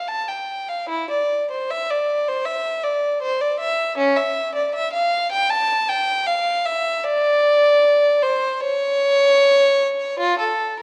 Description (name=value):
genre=classical, baroque-style suite movement for unaccompanied violin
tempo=78 BPM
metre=4/4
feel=rubato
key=D minor from 4.0 s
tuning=A4 = 439 Hz
part: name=warm violin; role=solo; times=0.0-10.8 s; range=C#4 to A5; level=-20 LUFS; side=equal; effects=none
room=wet recital hall reverb, RT60 1.5 s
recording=worn, warbling old tape, cassette tape, warbly pitch drift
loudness=-20 LUFS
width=mono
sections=0.0-10.8 A section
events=none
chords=none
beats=0.09 | 0.90 1.70 2.45 3.21 | 3.98 4.74 5.50 6.26 | 7.04 7.83 8.61 9.38 | 10.20